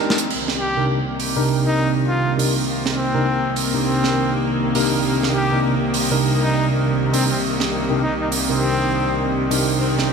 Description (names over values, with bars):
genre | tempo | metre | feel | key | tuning
glitch hop | 101 BPM | 4/4 | swing 59% on 16ths | C minor | A4 = 442 Hz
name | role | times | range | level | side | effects
tine electric piano | stabs | 0.0-10.1 s | C3 to Bb4 | -21 LUFS | right 1 dB | medium stereo tremolo, vintage 12-bit sampler grit, low-pass filter, diffuse ambient delay
warbly tape-like pad | texture | 0.0-10.1 s | C4 to Eb6 | -27 LUFS | left 2 dB | chorus, built-in reverb
tight metal drum kit | drums | 0.1-10.1 s | crash cymbal, hi-hat, snare drum | -25 LUFS | right 4 dB | none
rich chamber string section | sustained chords | 0.3-10.1 s | C2 to C4 | -24 LUFS | equal | vintage 12-bit sampler grit, low-pass filter
clear trumpet | melody | 0.6-10.1 s | C4 to G4 | -25 LUFS | left 1 dB | diffuse ambient delay
room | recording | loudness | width
wet church reverb, RT60 3.1 s | dreamy mix soaked in reverb | -17 LUFS | side -6 dB against mid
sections
0.3-10.1 A section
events
drum fill 0.0; filter sweep on string section 0.3-10.1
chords
0.3 Cm7